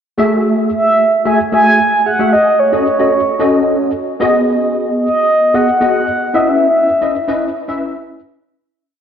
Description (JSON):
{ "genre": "funk", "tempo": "112 BPM", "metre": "4/4", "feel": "straight", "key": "C# minor", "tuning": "A4 = 440 Hz", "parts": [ { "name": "tine electric piano", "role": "accompaniment", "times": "0.2-8.2 s", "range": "A3 to E5", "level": "-14 LUFS", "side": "left 1 dB", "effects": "ensemble chorus" }, { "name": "mellow horn-like synth lead", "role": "melody", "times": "0.7-8.2 s", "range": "C#5 to G#5", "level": "-13 LUFS", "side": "right 1 dB", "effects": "chorus, analog delay" } ], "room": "wet plate reverb, RT60 2.8 s", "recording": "dreamy mix soaked in reverb", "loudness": "-11 LUFS", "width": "side -8 dB against mid", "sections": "0.2-8.8 verse", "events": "fade-out 6.6-8.8", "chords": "0.2 F#m9; 2.3 D#m7b5; 4.2 G#m7; 6.3 C#m9", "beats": "| 0.18 0.72 1.26 1.79 | 2.33 2.86 3.40 3.94 | 4.47 5.01 5.54 6.08 | 6.61 7.15 7.68 8.22" }